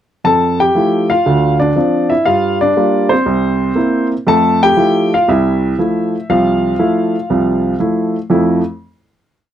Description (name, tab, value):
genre	solo jazz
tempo	119 BPM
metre	4/4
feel	swing 69% on 8ths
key	F major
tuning	A4 = 440 Hz
part	warm upright piano	solo	0.2-8.6 s	C2 to A5	-11 LUFS	equal	none
room	light reverb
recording	dry, close 1970s-style studio recording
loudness	-11 LUFS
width	side -10 dB against mid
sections	0.2-8.3 A section; 8.3-9.5 final chord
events	none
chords	0.2 Fmaj7; 1.2 Dm7; 2.2 Gm7; 3.3 C7; 4.3 Fmaj7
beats	| 0.24 0.74 1.24 1.75 | 2.25 2.75 3.26 3.76 | 4.26 4.77 5.27 5.78 | 6.28 6.78 7.28 7.79 | 8.29